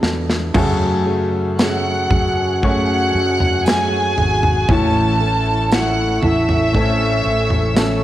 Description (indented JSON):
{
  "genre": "pop ballad",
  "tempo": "58 BPM",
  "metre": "4/4",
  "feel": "straight",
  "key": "unclear",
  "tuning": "A4 = 441 Hz",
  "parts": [
    { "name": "warm studio violin section", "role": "melody", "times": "0.0-8.0 s", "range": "G#4 to F#6", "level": "-20 LUFS", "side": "right 1 dB", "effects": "cassette tape" },
    { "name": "clear baby grand piano", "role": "accompaniment", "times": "0.0-8.0 s", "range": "A2 to E5", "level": "-24 LUFS", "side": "left 3 dB", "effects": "cassette tape" },
    { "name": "nylon-string guitar", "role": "arpeggios", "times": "0.0-8.0 s", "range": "F#2 to A4", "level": "-23 LUFS", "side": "right 3 dB", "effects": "cassette tape" },
    { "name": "fretless electric bass", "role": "bass", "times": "0.0-8.0 s", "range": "G#1 to F#2", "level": "-22 LUFS", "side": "equal", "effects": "none" },
    { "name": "modern studio drum kit", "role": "drums", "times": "0.0-8.0 s", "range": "crash cymbal, kick drum, snare drum, toms", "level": "-20 LUFS", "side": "equal", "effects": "cassette tape" },
    { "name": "mellow French horn section", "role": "second line", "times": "0.5-8.0 s", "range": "C#4 to F#4", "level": "-25 LUFS", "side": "left 2 dB", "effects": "cassette tape" },
    { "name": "granular cloud pad", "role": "sustained chords", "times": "2.2-8.0 s", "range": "A4 to C#6", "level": "-29 LUFS", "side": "equal", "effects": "built-in reverb, cassette tape" },
    { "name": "tambourine", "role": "percussion", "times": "1.6-8.0 s", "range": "none", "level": "-36 LUFS", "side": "right 6 dB", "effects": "none" }
  ],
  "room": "light reverb",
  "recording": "home recording on cassette",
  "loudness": "-14 LUFS",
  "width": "side -13 dB against mid",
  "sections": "0.6-8.0 A section",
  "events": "drum fill 0.0-0.6",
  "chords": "0.0 E7sus4; 0.6 F#madd9; 4.7 A",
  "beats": "| 0.55 1.59 2.63 3.66 | 4.69 5.72 6.74 7.76"
}